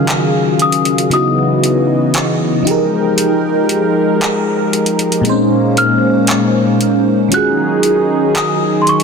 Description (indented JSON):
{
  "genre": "contemporary R&B",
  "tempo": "58 BPM",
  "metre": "4/4",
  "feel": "straight",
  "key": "Bb minor",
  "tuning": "A4 = 440 Hz",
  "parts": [
    { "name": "small celesta", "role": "melody", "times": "0.0-9.0 s", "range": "C6 to Gb6", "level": "-18 LUFS", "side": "left 2 dB", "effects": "ping-pong delay" },
    { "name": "FM electric piano with soft pad layer", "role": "accompaniment", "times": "0.0-9.0 s", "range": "Bb2 to C5", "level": "-15 LUFS", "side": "equal", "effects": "chorus, phaser" },
    { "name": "warm analog pad", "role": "sustained chords", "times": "0.0-9.0 s", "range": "Db3 to G5", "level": "-15 LUFS", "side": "equal", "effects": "chorus" },
    { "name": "booming analog drum machine", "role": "drums", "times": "0.1-9.0 s", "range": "handclaps, hi-hat", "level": "-20 LUFS", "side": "equal", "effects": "none" }
  ],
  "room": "moderate plate reverb, RT60 3.4 s",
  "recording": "dense, heavily limited modern master",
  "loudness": "-11 LUFS",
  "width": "side -5 dB against mid",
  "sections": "0.0-9.0 A section",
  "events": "break 0.0-9.0",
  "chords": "0.0 Ebm11; 1.1 Dbm11; 2.7 Fm11; 5.3 Bbm11; 7.3 Ebm11"
}